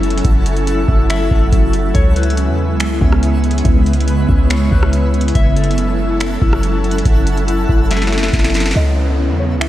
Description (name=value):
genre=hip hop, atmospheric cloud-rap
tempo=141 BPM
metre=4/4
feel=half-time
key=C# minor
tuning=A4 = 441 Hz
part: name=ethereal airy pad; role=sustained chords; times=0.0-9.7 s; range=C#3 to A4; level=-18 LUFS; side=equal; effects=ensemble chorus, built-in reverb, sidechain pumping, low-pass filter
part: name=mellow electric guitar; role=arpeggios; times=0.0-9.7 s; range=C#4 to E5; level=-25 LUFS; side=left 5 dB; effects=lush chorus, low-pass filter, tape echo
part: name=warm 808-style bass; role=bass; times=0.0-9.7 s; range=F#1 to E2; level=-16 LUFS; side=equal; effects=none
part: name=booming analog drum machine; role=drums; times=0.0-9.7 s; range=finger snaps, hi-hat, kick drum, rim click, snare drum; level=-16 LUFS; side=equal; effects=none
part: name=twinkling granular texture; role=texture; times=0.0-9.7 s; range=A3 to C#6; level=-28 LUFS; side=right 1 dB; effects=built-in reverb
part: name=string-like resonator pluck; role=melody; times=8.8-9.7 s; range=C#5 to E5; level=-26 LUFS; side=right 1 dB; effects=chorus, phaser, low-pass filter, tape echo
part: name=downlifter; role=sound effects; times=8.8-9.7 s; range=none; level=-27 LUFS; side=equal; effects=none
room=light reverb, digital ambience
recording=none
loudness=-12 LUFS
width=side -14 dB against mid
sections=0.0-8.8 A section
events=drum fill 7.9-8.8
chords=0.0 F#m7; 1.9 C#m7; 5.4 F#m7; 8.8 C#m7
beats=| 0.25 0.67 1.10 1.52 | 1.95 2.37 2.80 3.23 | 3.65 4.08 4.50 4.93 | 5.35 5.78 6.20 6.63 | 7.05 7.48 7.91 8.33 | 8.76 9.18 9.61